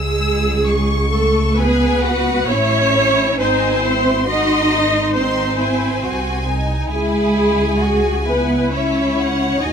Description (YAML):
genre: classical, slow romantic movement for string orchestra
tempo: 67 BPM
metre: 4/4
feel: rubato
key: C# minor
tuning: A4 = 439 Hz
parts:
  - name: rich studio violin section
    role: melody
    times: 0.0-9.7 s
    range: E5 to E6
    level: -24 LUFS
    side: left 2 dB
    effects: none
  - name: rich symphonic viola section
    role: accompaniment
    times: 0.0-9.7 s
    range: G#4 to D#5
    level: -18 LUFS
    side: equal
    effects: none
  - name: rich symphonic cello section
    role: bass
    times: 0.0-9.7 s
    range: G#3 to D#4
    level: -20 LUFS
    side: right 2 dB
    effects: none
  - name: rich symphonic double bass section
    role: bass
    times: 0.0-9.7 s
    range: G#1 to D#2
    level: -22 LUFS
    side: right 1 dB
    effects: none
  - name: warm symphonic violin section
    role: second line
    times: 1.6-9.7 s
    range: D#4 to G#4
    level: -24 LUFS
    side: left 3 dB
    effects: none
room: little or no reverb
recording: close, detailed microphones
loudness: -14 LUFS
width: side -7 dB against mid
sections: 0.0-9.7 A section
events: none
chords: 0.0 C#m; 3.4 G#; 6.9 C#m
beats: 0.68 1.58 2.50 | 3.39 4.28 5.16 6.04 | 6.92 7.82 8.72 9.61